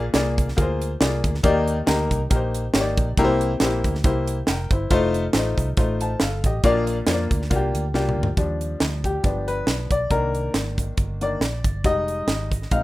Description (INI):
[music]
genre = uptempo gospel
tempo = 139 BPM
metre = 4/4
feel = swing 55% on 8ths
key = Eb major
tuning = A4 = 438 Hz
[part]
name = bright upright piano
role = accompaniment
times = 0.0-12.8 s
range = Bb2 to A5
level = -23 LUFS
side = left 2 dB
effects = plate reverb
[part]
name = vintage muted fingered electric bass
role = bass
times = 0.0-12.8 s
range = F1 to F2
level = -26 LUFS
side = right 1 dB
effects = none
[part]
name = crisp fusion drum kit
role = drums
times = 0.1-12.8 s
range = hi-hat, kick drum, snare drum, toms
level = -23 LUFS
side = right 1 dB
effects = none
[sound]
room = light reverb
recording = rough home demo mix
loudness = -19 LUFS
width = side -17 dB against mid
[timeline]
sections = 0.0-8.4 A section; 8.4-12.8 B section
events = drum fill 7.9-8.4; upright piano solo 8.4-12.8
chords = 0.0 Bb7; 1.4 Ebmaj7; 3.2 C7; 4.9 F7; 6.6 Bb; 8.4 Ebmaj7; 9.2 G7; 10.1 Cm9; 11.8 Fm9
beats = 0.14 0.58 1.01 | 1.44 1.88 2.31 2.74 | 3.17 3.61 4.04 4.47 | 4.91 5.34 5.77 6.21 | 6.64 7.07 7.50 7.94 | 8.37 8.80 9.24 9.67 | 10.11 10.54 10.97 11.41 | 11.84 12.28 12.71